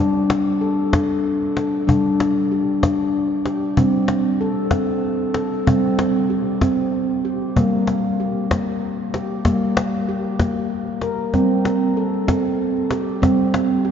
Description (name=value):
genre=world meditative, meditative tuned percussion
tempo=95 BPM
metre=3/4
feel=swing 54% on 16ths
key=G minor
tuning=A4 = 438 Hz
part: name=handpan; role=arpeggios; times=0.0-13.9 s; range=G3 to Bb4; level=-18 LUFS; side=equal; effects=diffuse ambient delay, shimmer reverb
part: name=cajon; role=percussion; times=0.3-13.7 s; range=none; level=-24 LUFS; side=left 2 dB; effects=none
room=wet cathedral reverb, RT60 4.8 s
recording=in a vast, echoing space, nothing above 7.5 kHz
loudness=-17 LUFS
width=side -8 dB against mid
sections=0.0-9.5 A section; 9.5-13.9 B section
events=none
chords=0.0 D5/G; 1.9 G5; 3.8 Gsus24; 5.7 C5/G; 7.6 Gm; 11.3 Gsus24; 13.2 C5/G